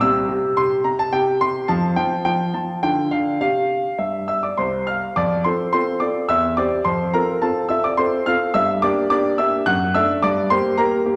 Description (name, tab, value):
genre	classical-period piano sonatina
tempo	107 BPM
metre	3/4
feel	straight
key	F major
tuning	A4 = 440 Hz
part	clear concert grand piano	solo	0.0-11.2 s	C2 to F#6	-20 LUFS	equal	none
room	wet recital hall reverb, RT60 1.6 s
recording	none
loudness	-20 LUFS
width	mono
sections	0.0-5.2 A section; 5.2-11.2 B section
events	none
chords	0.0 C; 1.7 F5; 2.8 Dm; 3.4 C; 5.2 F; 6.3 C/E; 6.9 F; 8.5 Gm; 9.7 D/F#; 10.2 Gm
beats	| 0.03 0.58 1.14 | 1.69 2.26 2.83 | 3.41 4.00 4.58 | 5.16 5.73 6.29 | 6.86 7.42 7.98 | 8.55 9.11 9.67 | 10.23 10.79